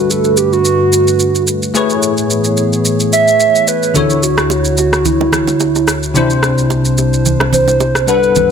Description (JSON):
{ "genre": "amapiano", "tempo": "109 BPM", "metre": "4/4", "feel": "swing 55% on 16ths", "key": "unclear", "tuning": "A4 = 438 Hz", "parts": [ { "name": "hollow clarinet-like synth lead", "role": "melody", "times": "0.0-8.5 s", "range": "E4 to E5", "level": "-13 LUFS", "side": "right 2 dB", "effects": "chorus, phaser, ping-pong delay" }, { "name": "bell-like tine electric piano", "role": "accompaniment", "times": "0.0-8.5 s", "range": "C3 to F#5", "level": "-16 LUFS", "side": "left 4 dB", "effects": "ensemble chorus" }, { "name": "hollow soft pad", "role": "sustained chords", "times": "0.0-8.5 s", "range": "C2 to F#5", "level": "-18 LUFS", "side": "right 1 dB", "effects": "chorus" }, { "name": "electronic shaker and rim click", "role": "drums", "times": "0.1-8.5 s", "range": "none", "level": "-18 LUFS", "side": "right 1 dB", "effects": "none" }, { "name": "congas and bongos", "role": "percussion", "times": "4.0-8.5 s", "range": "none", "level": "-20 LUFS", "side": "right 8 dB", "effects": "none" } ], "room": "light reverb", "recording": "none", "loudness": "-10 LUFS", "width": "side -7 dB against mid", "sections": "0.0-8.5 A section", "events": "none", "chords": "0.0 Gmaj9; 1.7 Amaj9; 4.0 Dmaj9; 6.2 Cadd9" }